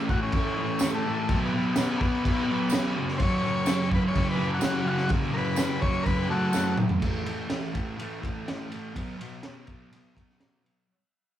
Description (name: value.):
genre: garage rock duo or trio.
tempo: 126 BPM.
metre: 4/4.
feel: straight.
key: unclear.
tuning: A4 = 440 Hz.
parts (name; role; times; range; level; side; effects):
thick fuzz guitar; riff; 0.0-10.9 s; F#2 to B3; -28 LUFS; right 1 dB; distortion.
overdriven combo organ; melody; 0.1-6.8 s; A3 to C#5; -30 LUFS; left 2 dB; none.
crunchy breakbeat drum kit; drums; 0.1-10.8 s; crash cymbal, kick drum, ride cymbal, snare drum, toms; -28 LUFS; equal; none.
tambourine; percussion; 0.8-6.6 s; none; -40 LUFS; right 8 dB; none.
room: light reverb.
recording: band playing live in one room.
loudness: -24 LUFS.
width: side -11 dB against mid.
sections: 0.0-7.0 A section; 7.0-10.9 B section.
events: drum fill 6.5-7.0; fade-out 7.0-10.9.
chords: 0.0 A; 1.3 B5; 2.9 F#5; 7.0 A5; 8.9 B5.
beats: 0.32 0.80 | 1.27 1.75 2.23 2.71 | 3.18 3.66 4.14 4.62 | 5.09 5.57 6.05 6.53 | 7.01 7.49 7.97 8.45 | 8.94 9.42 9.91 10.39.